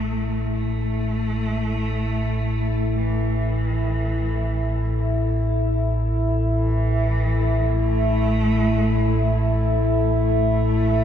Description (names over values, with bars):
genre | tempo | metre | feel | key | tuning
dark ambient drone | free time | none | none | unclear | A4 = 440 Hz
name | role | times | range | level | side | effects
warm cello | melody | 0.0-11.0 s | E3 to Bb3 | -28 LUFS | left 1 dB | shimmer reverb, ping-pong delay
dark analog pad | sustained chords | 0.0-11.0 s | E4 to E5 | -25 LUFS | left 2 dB | wide subtle chorus, shimmer reverb
deep rumbling drone | drone | 0.0-11.0 s | A1 to A2 | -21 LUFS | right 1 dB | built-in reverb, lush chorus
room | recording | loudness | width
wet cathedral reverb, RT60 6.6 s | none | -19 LUFS | side -9 dB against mid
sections
0.0-11.0 A section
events
fade-in on analog synth pad 0.0-11.0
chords
0.0 A5